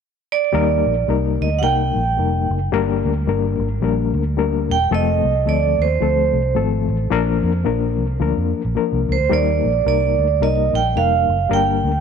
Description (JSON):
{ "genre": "uptempo 1960s-style soul", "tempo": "109 BPM", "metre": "4/4", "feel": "swing 59% on 8ths", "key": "Eb major", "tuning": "A4 = 436 Hz", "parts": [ { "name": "vibraphone with medium hard mallets", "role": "melody", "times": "0.3-12.0 s", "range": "C5 to G5", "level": "-20 LUFS", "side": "right 9 dB", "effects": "slapback echo" }, { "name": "overdriven reed electric piano", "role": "accompaniment", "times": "0.5-11.9 s", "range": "F3 to Bb4", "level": "-21 LUFS", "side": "left 11 dB", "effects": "fast tremolo" }, { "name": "vintage muted fingered electric bass", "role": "bass", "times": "0.5-12.0 s", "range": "Fb1 to F2", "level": "-20 LUFS", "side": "equal", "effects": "none" } ], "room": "light reverb, small room ambience", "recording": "1960s-style stereo with parts hard left and right", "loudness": "-16 LUFS", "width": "side -6 dB against mid", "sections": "0.5-12.0 A section", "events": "none", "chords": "0.0 N.C.; 0.5 Eb; 2.7 Gm; 4.9 F; 7.1 Bb; 9.3 Eb", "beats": "| 0.53 1.08 1.63 2.18 | 2.73 3.27 3.82 4.37 | 4.92 5.47 6.02 6.57 | 7.12 7.67 8.22 8.77 | 9.32 9.87 10.41 10.96 | 11.51" }